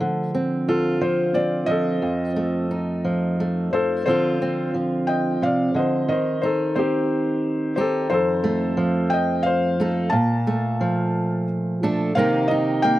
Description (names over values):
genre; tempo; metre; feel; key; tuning
folk; 89 BPM; 3/4; straight; unclear; A4 = 441 Hz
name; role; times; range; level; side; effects
fingerpicked steel-string acoustic guitar; accompaniment; 0.0-13.0 s; F2 to A4; -21 LUFS; right 1 dB; none
felt-muted upright piano; melody; 0.7-13.0 s; G4 to A5; -23 LUFS; left 2 dB; slapback echo
room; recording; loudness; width
light reverb; recorded outdoors, with no room sound; -19 LUFS; side -15 dB against mid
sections
0.0-4.1 A section; 4.1-12.2 B section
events
none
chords
0.0 Dm7; 2.0 F7; 4.1 Dm7; 6.1 Cm/Eb; 8.1 F7; 10.1 Bbmaj7; 12.2 Cm7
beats
| 0.00 0.68 1.35 | 2.03 2.71 3.39 | 4.07 4.74 5.42 | 6.09 6.76 7.44 | 8.11 8.78 9.45 | 10.12 10.80 11.47 | 12.15 12.83